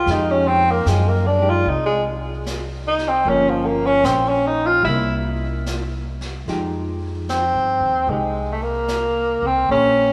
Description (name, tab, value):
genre	jazz ballad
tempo	75 BPM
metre	4/4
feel	swing 66% on 8ths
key	F minor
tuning	A4 = 440 Hz
part	warm tenor saxophone	melody	0.0-10.1 s	F3 to F4	-20 LUFS	equal	none
part	hollow-body jazz guitar	accompaniment	0.0-10.1 s	F3 to C5	-30 LUFS	equal	none
part	upright bass	bass	0.1-10.1 s	G1 to G2	-27 LUFS	equal	none
part	vintage brush drum kit	drums	0.1-10.1 s	brushed snare drum, hi-hat, snare drum	-36 LUFS	equal	none
room	wet lush hall reverb, RT60 3.0 s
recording	rough home demo mix, small room ambience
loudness	-20 LUFS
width	mono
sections	0.0-6.5 A section; 6.5-10.1 B section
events	tenor saxophone solo 0.0-6.5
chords	0.1 Fm9; 3.2 Gm7b5; 4.9 C7; 6.5 Fm9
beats	| 0.06 0.86 1.66 2.45 | 3.25 4.05 4.85 5.67 | 6.48 7.29 8.09 8.89 | 9.69